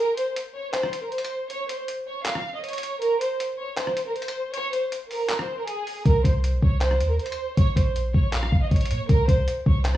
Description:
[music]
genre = hip hop, trap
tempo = 158 BPM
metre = 4/4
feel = half-time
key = unclear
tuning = A4 = 440 Hz
[part]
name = warm symphonic violin section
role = melody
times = 0.0-10.0 s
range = Ab4 to F5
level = -26 LUFS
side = right 1 dB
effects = low-pass filter, slapback echo
[part]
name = lo-fi sampler-style drum kit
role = drums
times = 0.2-10.0 s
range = handclaps, hi-hat, kick drum, rim click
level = -24 LUFS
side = equal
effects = none
[part]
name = clean 808-style bass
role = bass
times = 6.1-10.0 s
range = Bb1 to Bb2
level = -23 LUFS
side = equal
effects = none
[sound]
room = digital ambience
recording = small room reverb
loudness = -22 LUFS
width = side -14 dB against mid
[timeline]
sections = 0.0-10.0 A section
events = break 0.0-6.1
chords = 0.0 N.C.; 7.6 Bbm; 9.1 N.C.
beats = 0.36 0.74 1.12 | 1.50 1.88 2.26 2.64 | 3.02 3.40 3.78 4.16 | 4.54 4.92 5.30 5.67 | 6.05 6.43 6.82 7.19 | 7.57 7.95 8.33 8.71 | 9.09 9.47 9.85

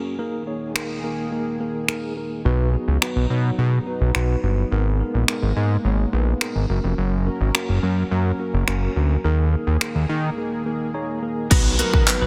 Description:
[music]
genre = dance-pop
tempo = 106 BPM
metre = 4/4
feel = straight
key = B major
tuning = A4 = 440 Hz
[part]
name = mellow tine electric piano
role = accompaniment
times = 0.0-12.3 s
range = F#3 to A#5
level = -30 LUFS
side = equal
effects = sidechain pumping
[part]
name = chorused pulse-width pad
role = sustained chords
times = 0.0-12.3 s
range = D#3 to A#4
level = -34 LUFS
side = equal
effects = sidechain pumping
[part]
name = pop drum kit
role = drums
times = 0.8-12.2 s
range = crash cymbal, finger snaps, handclaps, hi-hat, kick drum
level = -23 LUFS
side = equal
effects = soft clipping on snare
[part]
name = fat analog bass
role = bass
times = 2.5-12.3 s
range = E#1 to D#3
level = -22 LUFS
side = equal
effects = sidechain pumping
[part]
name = clean electric guitar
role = riff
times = 11.5-12.3 s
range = B3 to B4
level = -29 LUFS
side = equal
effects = ensemble chorus
[part]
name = downlifter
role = sound effects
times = 11.6-12.3 s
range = none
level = -34 LUFS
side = equal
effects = none
[part]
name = soft octave-layered synth lead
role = melody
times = 11.8-12.3 s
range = A#4 to B4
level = -27 LUFS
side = equal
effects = chorus
[sound]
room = light reverb, digital ambience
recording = dense, heavily limited modern master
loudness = -22 LUFS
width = mono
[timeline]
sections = 0.0-11.5 A section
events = break 10.4-11.5; tine electric piano fill 10.7-11.5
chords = 0.2 D#sus4; 2.5 B; 4.7 G#madd9; 6.7 F#; 9.2 D#sus4; 11.5 B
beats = | 0.19 0.76 1.32 1.89 | 2.45 3.02 3.58 4.15 | 4.72 5.28 5.85 6.42 | 6.98 7.55 8.11 8.68 | 9.24 9.81 10.38 10.94 | 11.51 12.07

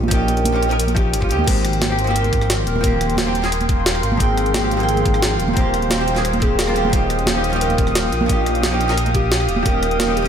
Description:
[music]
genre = liquid drum and bass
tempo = 176 BPM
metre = 4/4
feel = straight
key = Ab major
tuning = A4 = 440 Hz
[part]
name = hollow-body jazz guitar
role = accompaniment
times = 0.0-10.3 s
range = F3 to G5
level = -23 LUFS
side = right 1 dB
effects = wide subtle chorus, ping-pong delay
[part]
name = dark detuned saw bass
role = bass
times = 0.0-10.3 s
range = Eb1 to Eb2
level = -21 LUFS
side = equal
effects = none
[part]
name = congas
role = percussion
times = 0.0-10.1 s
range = none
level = -26 LUFS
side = right 5 dB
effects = none
[part]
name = hollow clarinet-like synth lead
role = melody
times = 0.1-10.3 s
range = G4 to C5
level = -25 LUFS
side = left 1 dB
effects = chorus, analog delay
[part]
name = electronic kick drum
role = drums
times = 0.1-9.7 s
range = none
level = -20 LUFS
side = equal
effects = studio reverb
[part]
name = jungle sampler-style drum kit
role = drums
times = 0.1-10.3 s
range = crash cymbal, hi-hat, rim click, snare drum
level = -23 LUFS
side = equal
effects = studio reverb
[part]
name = airy breathy pad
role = sustained chords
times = 1.5-10.3 s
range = Bb4 to Eb6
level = -24 LUFS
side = right 1 dB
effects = chorus
[sound]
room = moderate lush hall reverb, RT60 2.0 s, digital ambience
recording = dreamy mix soaked in reverb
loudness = -15 LUFS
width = side -8 dB against mid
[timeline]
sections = 0.0-10.3 A section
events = none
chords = 0.0 Eb9; 1.5 Abmaj13; 6.9 Eb9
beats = | 0.11 0.45 0.79 1.14 | 1.48 1.82 2.16 2.50 | 2.84 3.18 3.52 3.86 | 4.20 4.54 4.88 5.23 | 5.57 5.91 6.25 6.59 | 6.93 7.27 7.61 7.95 | 8.29 8.63 8.98 9.32 | 9.66 10.00

